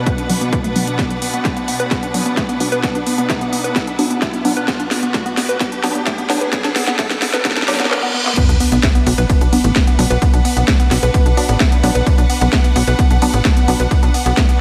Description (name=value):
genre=driving peak-time techno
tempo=130 BPM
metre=4/4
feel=straight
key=B minor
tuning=A4 = 441 Hz
part: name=woody wave-folded pluck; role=riff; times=0.0-14.5 s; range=A3 to B4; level=-23 LUFS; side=equal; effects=chorus, tube saturation, sidechain pumping, tape echo
part: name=swarming drone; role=drone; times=0.0-7.9 s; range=B2 to B3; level=-31 LUFS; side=equal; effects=built-in reverb, sidechain pumping
part: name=riser, reverse cymbal and sub drop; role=sound effects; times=0.2-10.2 s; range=none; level=-28 LUFS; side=equal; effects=none
part: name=clear studio string section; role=texture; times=0.0-14.6 s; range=D4 to F#5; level=-28 LUFS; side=equal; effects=sidechain pumping
part: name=electronic kick drum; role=drums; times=0.1-14.5 s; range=none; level=-19 LUFS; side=equal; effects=none
part: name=techno drum kit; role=drums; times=0.1-14.6 s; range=crash cymbal, handclaps, hi-hat, ride cymbal, snare drum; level=-23 LUFS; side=equal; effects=sidechain pumping on hats, sidechain pumping on cymbals
part: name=filtered dub chord stab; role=stabs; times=0.3-13.7 s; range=F#3 to D4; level=-24 LUFS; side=equal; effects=phaser, sidechain pumping, tape echo
part: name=tight sequencer bass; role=bass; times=8.5-14.3 s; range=A1 to B1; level=-18 LUFS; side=equal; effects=sidechain pumping
room=moderate lush hall reverb, RT60 1.6 s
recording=dreamy mix soaked in reverb, high-pass filter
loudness=-16 LUFS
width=mono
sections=0.0-8.4 A section; 8.4-14.6 B section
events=build-up 0.0-8.4; filter sweep on synth arpeggio sound 0.0-8.4; filter sweep on synth stab 0.0-8.4; filter sweep 0.0-8.4; riser 0.2-8.4; drum fill 1.0-7.9, 7.9-8.4; reverse cymbal 7.5-8.4; drop 8.4-14.6; impact 8.4-10.2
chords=0.0 Bm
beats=0.07 0.53 | 0.99 1.45 1.91 2.37 | 2.83 3.30 3.76 4.22 | 4.68 5.14 5.60 6.07 | 6.53 6.99 7.45 7.91 | 8.37 8.83 9.30 9.76 | 10.22 10.68 11.14 11.60 | 12.06 12.53 12.99 13.45 | 13.91 14.37